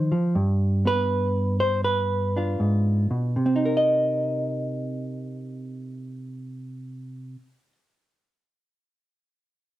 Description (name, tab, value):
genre	solo jazz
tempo	80 BPM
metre	4/4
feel	swing 67% on 8ths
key	C minor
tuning	A4 = 437 Hz
part	hollow-body jazz guitar	solo	0.0-7.7 s	G2 to Eb5	-23 LUFS	equal	none
room	wet studio reverb, RT60 0.5 s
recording	rough home demo mix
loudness	-21 LUFS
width	side -14 dB against mid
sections	0.0-3.3 A section; 3.3-6.3 B section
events	none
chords	0.3 G7b9; 3.3 Cm7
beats	| 0.35 1.10 1.85 2.60 | 3.35 4.10 4.85 5.60